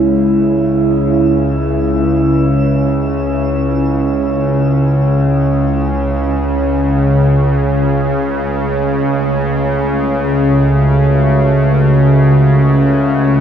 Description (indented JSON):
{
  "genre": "dark ambient drone",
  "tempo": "free time",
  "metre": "none",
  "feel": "none",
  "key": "C# minor",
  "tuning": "A4 = 440 Hz",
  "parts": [
    { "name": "sweeping resonant pad", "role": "sustained chords", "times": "0.0-13.4 s", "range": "C#3 to F#4", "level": "-16 LUFS", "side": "right 1 dB", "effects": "chorus, phaser, shimmer reverb" },
    { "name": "bowed-like drone", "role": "drone", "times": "0.0-13.4 s", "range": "C#2 to C#3", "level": "-12 LUFS", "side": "equal", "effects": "built-in reverb" }
  ],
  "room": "wet cathedral reverb, RT60 5.1 s",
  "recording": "none",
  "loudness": "-11 LUFS",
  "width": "side -8 dB against mid",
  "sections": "0.0-13.4 A section",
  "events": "fade-out on analog synth pad 0.0-13.4",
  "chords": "0.0 C#m; 7.9 F#m/C#"
}